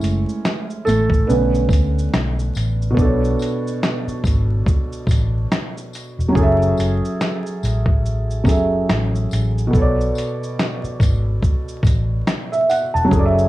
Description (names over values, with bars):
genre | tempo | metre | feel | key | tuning
lo-fi hip hop | 71 BPM | 4/4 | swing 58% on 16ths | B dorian | A4 = 439 Hz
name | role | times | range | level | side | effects
felt-muted upright piano | accompaniment | 0.0-13.5 s | B2 to A5 | -20 LUFS | right 1 dB | cassette tape, low-pass filter
vintage muted fingered electric bass | bass | 0.0-13.5 s | E1 to D2 | -19 LUFS | equal | none
dusty soul sampler-style drum kit | drums | 0.0-13.5 s | hi-hat, kick drum, shaker, snare drum | -19 LUFS | equal | none
tambourine | percussion | 0.0-12.9 s | none | -41 LUFS | left 13 dB | none
room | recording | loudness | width
light reverb | vinyl crackle, small room ambience | -16 LUFS | side -16 dB against mid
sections
0.0-3.0 A section; 3.0-13.5 B section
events
felt piano solo 0.0-3.0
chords
0.0 F#m7; 1.3 Bm9; 3.0 Bm7; 6.4 F#m7; 9.7 Bm7